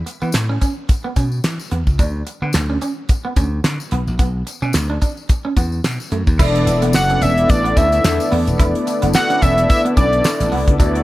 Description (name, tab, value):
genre	early-eighties boogie funk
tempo	109 BPM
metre	4/4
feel	swing 56% on 16ths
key	unclear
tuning	A4 = 441 Hz
part	clean electric guitar	riff	0.1-10.9 s	A3 to E4	-26 LUFS	right 4 dB	lush chorus
part	damped 70s drum kit	drums	0.1-11.0 s	crash cymbal, handclaps, hi-hat, kick drum, snare drum	-18 LUFS	equal	none
part	tambourine	percussion	0.1-10.9 s	none	-33 LUFS	left 7 dB	none
part	slap bass	bass	0.2-11.0 s	D#1 to E3	-19 LUFS	equal	none
part	mellow synth brass	accompaniment	6.4-11.0 s	B3 to D5	-20 LUFS	left 1 dB	chorus
part	warm analog pad	sustained chords	6.4-11.0 s	D3 to E4	-26 LUFS	left 2 dB	chorus
part	fat analog lead	melody	6.9-10.5 s	D5 to F#5	-18 LUFS	equal	slapback echo
room	little or no reverb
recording	none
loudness	-15 LUFS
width	side -17 dB against mid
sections	0.0-6.4 A section; 6.4-11.0 B section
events	none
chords	0.0 Esus4; 2.0 Bmadd9/D (rootless); 3.9 Bm; 6.4 E7sus4